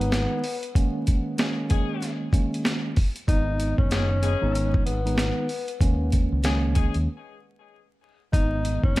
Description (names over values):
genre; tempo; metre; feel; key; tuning
hip hop, boom-bap hip-hop; 95 BPM; 4/4; swing 61% on 16ths; G# minor; A4 = 439 Hz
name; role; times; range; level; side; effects
breathy tenor saxophone; melody; 0.0-9.0 s; B3 to D#4; -31 LUFS; left 3 dB; high-pass filter, low-pass filter, plate reverb, tape echo
mellow tine electric piano; accompaniment; 0.0-9.0 s; D#3 to D#4; -28 LUFS; right 2 dB; slow stereo tremolo, cassette tape, high-pass filter, low-pass filter
deep dub fingered electric bass; bass; 0.0-9.0 s; F#1 to D#2; -26 LUFS; equal; none
boom bap sampler-style drum kit; drums; 0.0-9.0 s; hi-hat, kick drum, snare drum; -23 LUFS; equal; none
warm saxophone section; stabs; 1.4-9.0 s; B3 to G#4; -37 LUFS; left 11 dB; high-pass filter, low-pass filter, tape echo
room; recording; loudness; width
light reverb; vinyl crackle, lossy compression artefacts; -22 LUFS; side -18 dB against mid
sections
0.0-9.0 A section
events
break 7.1-8.3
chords
0.0 G#m; 0.8 D#7sus4; 3.3 G#m; 5.8 D#7sus4; 8.3 G#m